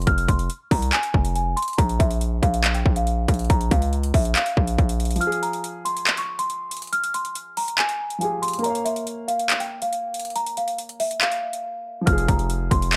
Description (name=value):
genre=hip hop, trap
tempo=140 BPM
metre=4/4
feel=half-time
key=F harmonic minor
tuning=A4 = 439 Hz
part: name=celesta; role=melody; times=0.0-13.0 s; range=E5 to F6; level=-28 LUFS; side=equal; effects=analog delay
part: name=distorted 808-style bass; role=bass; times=0.0-5.2, 12.1-13.0 s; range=F1 to Db2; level=-25 LUFS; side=equal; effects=distortion
part: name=trap drum kit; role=drums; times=0.0-13.0 s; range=handclaps, hi-hat, kick drum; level=-26 LUFS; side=equal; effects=overdrive
part: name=warm grand piano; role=accompaniment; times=5.2-13.0 s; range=F3 to F5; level=-33 LUFS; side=equal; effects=none
room=small room reverb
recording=dry, gritty hardware recording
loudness=-23 LUFS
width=mono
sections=0.0-13.0 A section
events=break 5.2-12.1; kick muted 5.2-5.6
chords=0.0 Fm; 1.8 Bb5; 5.2 Fmadd9; 8.6 Bbm; 12.1 Fm